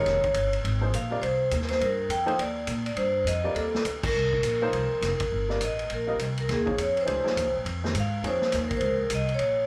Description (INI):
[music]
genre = modal jazz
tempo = 205 BPM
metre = 4/4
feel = swing 62% on 8ths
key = Bb dorian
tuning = A4 = 439 Hz
[part]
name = vibraphone with medium hard mallets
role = melody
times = 0.0-9.7 s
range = Ab4 to G5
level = -29 LUFS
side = equal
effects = none
[part]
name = warm upright piano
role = accompaniment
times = 0.0-9.1 s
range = Eb3 to Eb5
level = -36 LUFS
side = equal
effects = none
[part]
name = upright bass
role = bass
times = 0.0-9.7 s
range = F1 to Bb2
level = -33 LUFS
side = equal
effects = none
[part]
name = vintage drum kit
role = drums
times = 0.1-9.5 s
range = crash cymbal, hi-hat, kick drum, ride cymbal, snare drum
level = -36 LUFS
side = equal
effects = none
[sound]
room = moderate large studio reverb, RT60 0.8 s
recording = band playing live in one room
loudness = -27 LUFS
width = mono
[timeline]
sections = 0.0-9.7 A section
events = band accent 4.0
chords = 0.0 Bbm9; 1.2 Cm9; 5.9 Bbm9